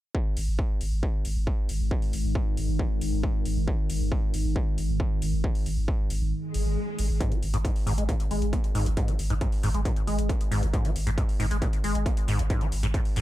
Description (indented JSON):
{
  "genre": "driving peak-time techno",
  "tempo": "136 BPM",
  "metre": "4/4",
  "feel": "straight",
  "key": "unclear",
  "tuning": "A4 = 440 Hz",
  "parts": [
    { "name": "deep dark ambient pad", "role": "drone", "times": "1.3-7.3 s", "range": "G#2 to D#3", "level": "-34 LUFS", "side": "equal", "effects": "chorus, built-in reverb, sidechain pumping" },
    { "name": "electronic kick drum", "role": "drums", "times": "0.1-13.0 s", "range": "none", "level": "-27 LUFS", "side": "equal", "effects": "distortion" },
    { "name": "saturated sub bass", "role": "bass", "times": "0.4-13.2 s", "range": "G#1", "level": "-28 LUFS", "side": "equal", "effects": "overdrive, sidechain pumping, low-pass filter" },
    { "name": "electronic hi-hat", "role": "drums", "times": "0.4-13.2 s", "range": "none", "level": "-40 LUFS", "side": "left 2 dB", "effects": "none" },
    { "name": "swell", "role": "sound effects", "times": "6.5-7.2 s", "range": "none", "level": "-34 LUFS", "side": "left 2 dB", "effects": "none" },
    { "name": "acid bass, saw", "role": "riff", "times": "7.2-13.2 s", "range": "G#1 to B3", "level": "-29 LUFS", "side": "equal", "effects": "ensemble chorus, sidechain pumping, ping-pong delay" }
  ],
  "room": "little or no reverb",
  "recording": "dark, warm production",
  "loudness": "-24 LUFS",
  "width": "side -15 dB against mid",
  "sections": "0.1-7.2 A section; 7.2-13.2 B section",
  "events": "kick drops out 6.3-7.2; swell 6.5-7.2; filter sweep on acid bass 7.2-13.2",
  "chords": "0.1 G#5; 7.2 N.C.",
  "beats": "| 0.15 0.59 1.03 1.47 | 1.91 2.35 2.79 3.23 | 3.68 4.12 4.56 5.00 | 5.44 5.88 6.32 6.76 | 7.21 7.65 8.09 8.53 | 8.97 9.41 9.85 10.29 | 10.73 11.18 11.62 12.06 | 12.50 12.94"
}